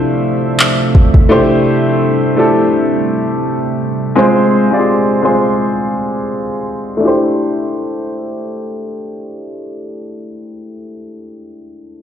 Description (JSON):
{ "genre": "contemporary R&B", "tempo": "84 BPM", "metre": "4/4", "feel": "swing 54% on 16ths", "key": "C major", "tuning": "A4 = 440 Hz", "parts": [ { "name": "warm concert grand piano", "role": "accompaniment", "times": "0.0-12.0 s", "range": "Ab3 to D5", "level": "-14 LUFS", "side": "left 1 dB", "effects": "low-pass filter" }, { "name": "deep dark ambient pad", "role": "sustained chords", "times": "0.0-4.1 s", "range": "C3 to E5", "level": "-18 LUFS", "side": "right 2 dB", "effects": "chorus, built-in reverb, sidechain pumping, low-pass filter" }, { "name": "smooth R&B drum kit", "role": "drums", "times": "0.6-1.3 s", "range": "handclaps, kick drum", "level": "-9 LUFS", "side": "equal", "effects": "none" } ], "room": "moderate lush hall reverb, RT60 1.9 s, digital ambience", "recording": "played on a big sound system in a bare room, stone room reverb", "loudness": "-11 LUFS", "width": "side -9 dB against mid", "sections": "0.0-7.0 A section; 7.0-9.9 B section", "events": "filter sweep 0.0-7.0", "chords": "0.0 Dm9; 1.3 C69; 4.2 Fm; 7.0 C69" }